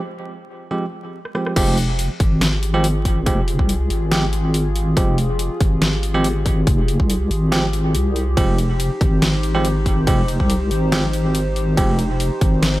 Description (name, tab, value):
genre	deep dubstep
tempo	141 BPM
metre	4/4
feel	swing 54% on 16ths, half-time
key	F minor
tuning	A4 = 439 Hz
part	barky tine electric piano	stabs	0.7-12.0 s	F3 to G4	-24 LUFS	right 2 dB	dub echo
part	dubstep drum kit	drums	1.3-12.7 s	crash cymbal, hi-hat, ride cymbal, rim click, snare drum	-24 LUFS	left 1 dB	overdrive, low-pass filter on hats, low-pass filter on snare, low-pass filter on cymbals
part	dark analog pad	sustained chords	2.5-12.8 s	Eb4 to C5	-27 LUFS	left 2 dB	chorus, phaser
part	deep soft wobble bass	bass	1.6-12.8 s	F1 to C2	-19 LUFS	equal	chorus
part	electronic kick drum	drums	1.6-12.5 s	none	-19 LUFS	equal	none
room	digital ambience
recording	vinyl crackle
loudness	-16 LUFS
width	side -17 dB against mid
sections	0.0-1.6 A section; 1.6-12.8 B section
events	break 0.0-1.6; drum fill 1.2-1.6; drop 1.6-12.8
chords	0.0 Fmadd9